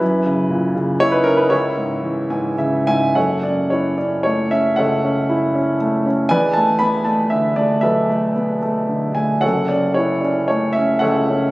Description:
classical, lyrical solo piano; 102-123 BPM; 3/4; rubato; F# minor from 3.2 s; A4 = 441 Hz
warm concert grand piano; solo; 0.0-11.5 s; E1 to B5; -15 LUFS; equal
moderate concert hall reverb, RT60 2.5 s; recorded on a phone in the room, studio ambience; -15 LUFS; side -19 dB against mid
0.0-3.2 A section; 3.2-11.5 B section
grand piano fill 2.0-3.2
0.0 F#7; 1.5 C#m; 3.2 F#m7; 6.3 E7sus4; 9.4 F#m7

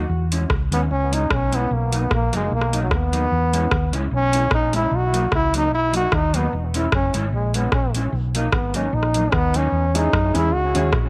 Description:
ska; 150 BPM; 4/4; swing 55% on 8ths; A4 = 437 Hz
clear trombone; melody; 0.0-10.9 s; F#3 to F#4; -25 LUFS; equal; tape echo
mellow electric guitar; accompaniment; 0.0-10.9 s; F#3 to E4; -30 LUFS; equal; analog chorus
hollow-body short-scale fingered electric bass; bass; 0.0-11.1 s; E1 to F#2; -25 LUFS; equal
booming analog drum machine; drums; 0.3-11.1 s; hi-hat, kick drum, rim click; -24 LUFS; equal
dark upright piano; stabs; 9.9-10.9 s; C#4 to G#4; -28 LUFS; equal; tape echo
small room ambience; -20 LUFS; mono
0.0-11.1 A section
trombone solo 0.0-11.1
0.1 E6; 1.7 Bmaj7; 3.3 E6; 4.9 Bmaj7; 6.5 E6; 8.1 Bmaj7; 9.7 E6

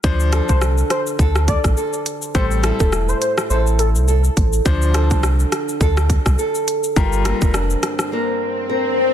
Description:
dancehall; 104 BPM; 4/4; swing 56% on 16ths; D minor; A4 = 440 Hz
clear grand piano; accompaniment; 0.0-7.5 s; F3 to C5; -25 LUFS; left 6 dB
nylon-string guitar; arpeggios; 0.0-9.1 s; G2 to Bb4; -23 LUFS; right 2 dB
warm sub bass; bass; 0.0-7.8 s; E1 to D2; -17 LUFS; equal
island pop drum kit; drums; 0.0-8.1 s; hi-hat, kick drum, rim click, shaker; -20 LUFS; equal; soft clipping on snare
warm velvety synth lead; melody; 0.5-3.9 s; A4 to D5; -24 LUFS; left 2 dB; chorus, tape echo
swell; sound effects; 8.1-9.1 s; -20 LUFS; left 4 dB
little or no reverb; dense, heavily limited modern master; -15 LUFS; side -10 dB against mid
0.0-9.1 A section
swell 8.1-9.1
0.0 Dm7; 2.3 Am7; 4.7 Dm7; 7.0 Gm7

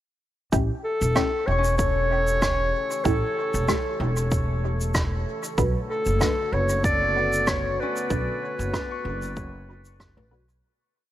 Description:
ambient dub; 95 BPM; 4/4; swing 55% on 16ths; B minor; A4 = 440 Hz
warm analog pad; sustained chords; 0.5-10.6 s; C#3 to A4; -36 LUFS; equal; chorus
filtered dub chord stab; stabs; 0.5-10.5 s; A3 to B4; -32 LUFS; right 1 dB; phaser, lush chorus, cassette tape, dub echo
upright bass; bass; 0.5-10.6 s; E1 to B1; -26 LUFS; equal
electronic kick drum; drums; 0.5-10.1 s; -27 LUFS; equal; overdrive
shaker and rim click; drums; 0.5-10.6 s; -31 LUFS; equal; dub echo
warm clarinet; melody; 0.8-10.3 s; A4 to D5; -26 LUFS; equal; dub echo
concert harp; arpeggios; 1.5-10.9 s; C#4 to C#6; -36 LUFS; left 6 dB; dub echo
light reverb, studio reverb; -22 LUFS; side -13 dB against mid
0.5-10.6 groove
fade-in on analog synth pad 0.5-10.6; fade-out 7.3-10.6
0.5 A7; 5.6 Bm7

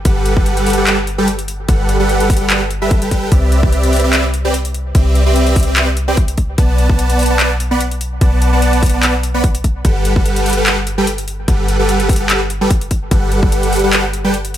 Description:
future bass; 147 BPM; 4/4; swing 54% on 16ths, half-time; G major; A4 = 440 Hz
warm 808-style bass; bass; 0.0-14.6 s; G1 to C2; -16 LUFS; equal; sidechain pumping
supersaw chords; riff; 0.1-14.3 s; G3 to B5; -16 LUFS; right 1 dB; sidechain pumping, dub echo
electronic kick drum; drums; 0.1-13.5 s; -14 LUFS; equal; overdrive
trap drum kit; drums; 0.1-14.6 s; handclaps, hi-hat; -19 LUFS; left 1 dB; overdrive
little or no reverb; -12 LUFS; side -12 dB against mid
0.0-14.6 A section
0.0 Gmaj9; 3.3 Cmaj9; 6.6 Bm7; 9.8 Gmaj9

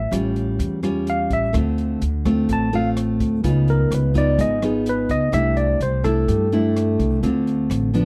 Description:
bossa nova; 127 BPM; 4/4; straight; A4 = 440 Hz
barky tine electric piano; melody; 0.0-7.2 s; Ab4 to A5; -25 LUFS; equal; overdrive, slapback echo
nylon-string guitar; accompaniment; 0.0-8.1 s; A2 to F4; -24 LUFS; equal
upright bass; bass; 0.0-8.1 s; Ab1 to G2; -25 LUFS; equal
open jazz drum kit; drums; 0.1-8.1 s; hi-hat, kick drum, rim click; -31 LUFS; equal
little or no reverb; dry, close 1970s-style studio recording; -20 LUFS; mono
0.0-8.1 A section
tine electric piano solo 0.0-8.1
0.0 A7b13; 1.5 Dm7; 3.4 Db9; 5.3 C69; 7.2 Dm7

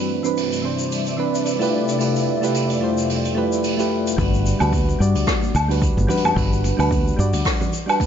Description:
sunset chillout; 110 BPM; 4/4; swing 56% on 16ths; G major; A4 = 440 Hz
soft electric-piano-like synth keys; accompaniment; 0.0-8.1 s; E3 to D5; -22 LUFS; moving between left 5 dB and right 6 dB; chorus, auto-pan, ping-pong delay
ethereal airy pad; sustained chords; 0.0-4.2 s; F2 to E5; -25 LUFS; left 1 dB; ensemble chorus, built-in reverb
jazz brush drum kit; drums; 0.2-8.1 s; hi-hat, rim click, shaker, woodblock; -26 LUFS; equal
fingered electric bass; bass; 4.2-7.4 s; G1 to G2; -20 LUFS; equal
electronic kick drum; drums; 4.2-8.1 s; -23 LUFS; equal; overdrive
congas; percussion; 4.2-8.1 s; -30 LUFS; right 4 dB
moderate concert hall reverb, RT60 2.2 s; nothing above 7.5 kHz; -18 LUFS; side -8 dB against mid
0.0-4.2 A section; 4.2-8.1 B section
0.0 Cmaj9; 1.7 Fmaj9#11; 4.2 Gmaj7

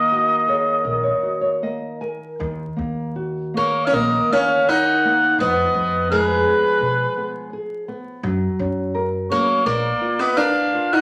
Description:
fado-style ballad; 74-86 BPM; 4/4; rubato; Eb minor; A4 = 445 Hz
warm oboe; melody; 0.0-11.0 s; Cb5 to Gb5; -21 LUFS; equal
picked twelve-string acoustic guitar; second line; 0.0-11.0 s; Ab3 to Eb4; -24 LUFS; equal
nylon-string guitar; accompaniment; 0.0-11.0 s; Eb3 to Ab5; -28 LUFS; equal
upright bass; bass; 0.0-9.9 s; Bb1 to Cb3; -31 LUFS; equal
wet large studio reverb, RT60 0.9 s; vinyl crackle; -20 LUFS; mono
0.0-2.4 A section; 2.4-11.0 A section
nylon-string guitar fill 0.1-2.4
0.0 Ebm7; 2.4 Ebm; 5.4 Fm7b5; 8.2 Gb; 9.7 Bb5

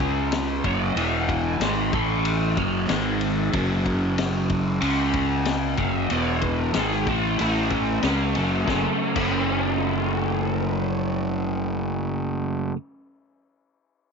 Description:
psychedelic rock; 93 BPM; 4/4; straight; F# dorian; A4 = 439 Hz
crunchy overdriven guitar; riff; 0.0-12.8 s; E2 to C#4; -23 LUFS; equal; flanger
fuzz fingered electric bass; bass; 0.0-12.7 s; E1 to C#2; -27 LUFS; right 1 dB; overdrive
vintage drum kit; drums; 0.0-9.3 s; crash cymbal, kick drum, ride cymbal, snare drum; -29 LUFS; left 5 dB
light reverb; 1960s-style stereo, nothing above 7.8 kHz; -21 LUFS; side -5 dB against mid
0.0-8.7 A section; 8.7-11.3 B section
0.0 C#5; 0.6 F#5; 1.0 E5; 1.6 G#5; 1.9 A5; 2.6 F#5; 2.9 G#5; 3.5 F#5; 4.8 C#5; 5.8 F#5; 6.1 E5; 6.8 Eadd11/G#; 7.4 A5; 8.0 F#5; 8.7 F#m

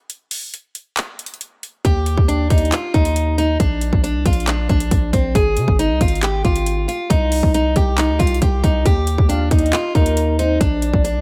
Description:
hip hop, trap; 137 BPM; 4/4; half-time; Eb major; A4 = 440 Hz
trap drum kit; drums; 0.1-11.1 s; handclaps, hi-hat, kick drum; -20 LUFS; equal
hard-hitting 808-style bass; bass; 1.8-11.2 s; Ab1 to C3; -22 LUFS; equal
picked steel-string acoustic guitar; melody; 1.9-11.2 s; C4 to Ab4; -22 LUFS; equal; tape echo
soft octave-layered synth lead; second line; 9.3-11.2 s; Bb4 to F5; -27 LUFS; equal; chorus, tremolo, tape echo
little or no reverb; -17 LUFS; mono
0.0-11.2 A section
break 0.0-1.8
0.0 N.C.; 1.8 Eb; 3.6 Bb; 5.4 N.C.; 7.1 Cm; 8.9 Eb; 10.6 Bb

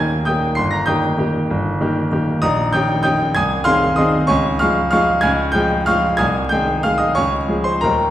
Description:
classical, piano waltz; 191 BPM; 3/4; uneven beats, rubato; A4 = 440 Hz
warm baby grand piano; solo; 0.0-8.1 s; G1 to C7; -15 LUFS; equal
wet recital hall reverb, RT60 1.7 s; heard from further back in the room, vinyl crackle; -15 LUFS; side -12 dB against mid
0.0-8.1 A section
0.0 Eb; 0.6 Eb/G; 2.4 Eb7/Bb; 3.3 Ab/C; 4.3 Db; 6.2 Ab/C; 7.2 Db

